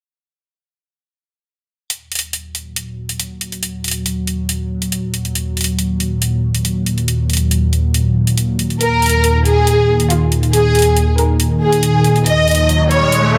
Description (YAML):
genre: heavy wobble dubstep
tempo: 139 BPM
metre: 4/4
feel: half-time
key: Eb minor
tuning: A4 = 440 Hz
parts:
  - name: lush unison pad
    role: sustained chords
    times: 2.8-13.4 s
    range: Eb2 to Gb3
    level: -18 LUFS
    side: equal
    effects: chorus
  - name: electronic hi-hat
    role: drums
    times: 1.9-13.2 s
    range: none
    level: -23 LUFS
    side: equal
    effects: overdrive, small room reverb
  - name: rich studio violin section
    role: melody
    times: 8.8-13.4 s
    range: F4 to Eb5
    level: -17 LUFS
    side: equal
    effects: tape echo
  - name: riser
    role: sound effects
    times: 12.6-13.4 s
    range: none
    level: -22 LUFS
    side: equal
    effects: none
room: moderate digital room reverb, RT60 1.1 s, digital ambience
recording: none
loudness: -16 LUFS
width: mono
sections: 1.9-13.4 A section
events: filter sweep on analog synth pad 1.9-13.4; riser 12.6-13.4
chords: 1.9 Ebm